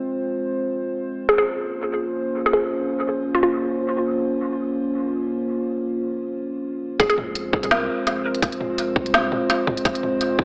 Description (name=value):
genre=half-time drum and bass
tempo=168 BPM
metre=4/4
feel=swing 55% on 16ths, half-time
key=F minor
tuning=A4 = 444 Hz
part: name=dark analog pad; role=sustained chords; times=0.0-10.4 s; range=Ab3 to C5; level=-26 LUFS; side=equal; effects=chorus, vintage 12-bit sampler grit, sidechain pumping
part: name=hollow square pluck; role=melody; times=1.3-3.5, 7.0-8.0 s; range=F4 to Bb4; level=-25 LUFS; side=equal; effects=chorus, dub echo
part: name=saturated sub bass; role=bass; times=7.0-10.4 s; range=F1 to C2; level=-42 LUFS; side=equal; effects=none
part: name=electronic kick drum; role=drums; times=7.0-10.4 s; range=none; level=-23 LUFS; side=equal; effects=studio reverb
part: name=organic electronic drum kit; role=drums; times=7.0-10.3 s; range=hi-hat, snare drum, toms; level=-24 LUFS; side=equal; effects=studio reverb, tape echo
room=wet plate reverb, RT60 2.1 s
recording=echo-heavy mix, AM radio sound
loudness=-23 LUFS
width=mono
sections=0.0-7.0 A section; 7.0-10.4 B section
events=drop 7.0-10.4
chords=0.0 Fm; 1.3 Bbmadd9; 7.0 Fm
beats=0.21 0.57 0.93 | 1.28 1.64 2.00 2.35 | 2.71 3.07 3.42 3.78 | 4.14 4.50 4.85 5.21 | 5.57 5.92 6.28 6.64 | 7.00 7.35 7.71 8.07 | 8.43 8.78 9.14 9.50 | 9.85 10.21